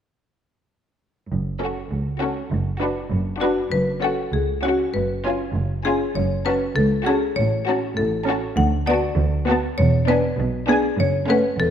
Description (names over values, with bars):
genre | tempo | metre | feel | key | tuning
cinematic | 99 BPM | 2/4 | straight | F# minor | A4 = 440 Hz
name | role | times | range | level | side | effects
clear chamber double bass section | bass | 1.3-11.7 s | E1 to D2 | -26 LUFS | right 2 dB | none
warm studio cello section | bass | 1.3-11.7 s | C#2 to B2 | -26 LUFS | right 1 dB | none
rich studio violin section | melody | 1.6-11.5 s | A4 to A5 | -30 LUFS | left 2 dB | none
warm studio violin section | second line | 1.6-11.5 s | C#4 to F#4 | -28 LUFS | left 1 dB | none
dark studio viola section | accompaniment | 1.6-11.5 s | A3 to D4 | -26 LUFS | right 2 dB | none
marimba with hard mallets | melody | 3.4-11.7 s | F#4 to F#5 | -23 LUFS | left 4 dB | none
room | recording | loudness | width
moderate scoring stage reverb, RT60 1.6 s | none | -19 LUFS | side -9 dB against mid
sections
1.3-3.7 A section; 3.7-11.7 B section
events
none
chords
1.3 F#m; 2.5 Bm/F#; 3.7 F#5; 7.4 F#m/A; 8.6 Bm7/D; 9.8 E7; 11.0 F#m